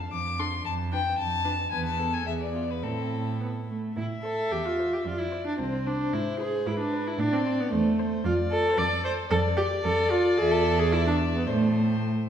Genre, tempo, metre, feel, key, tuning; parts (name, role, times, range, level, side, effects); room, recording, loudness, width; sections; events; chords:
quick classical-period movement for string quartet; 112 BPM; 2/4; rubato; A minor; A4 = 443 Hz
rich cello; bass; 0.0-12.3 s; C2 to A2; -30 LUFS; right 2 dB
dark violin; melody; 0.1-12.3 s; A4 to D6; -32 LUFS; left 6 dB
warm violin; second line; 0.4-12.3 s; E4 to E5; -34 LUFS; left 4 dB
warm viola; accompaniment; 0.4-12.0 s; A3 to D5; -26 LUFS; right 1 dB
wet recital hall reverb, RT60 1.5 s; heard from further back in the room; -24 LUFS; side -9 dB against mid
0.0-4.0 A section; 4.0-12.3 B section
0.0 Dm/F; 1.7 E5; 2.8 Am; 5.1 F5; 6.1 E7b13/G#; 7.2 Am; 8.3 Dm/F; 10.4 E7; 11.5 Am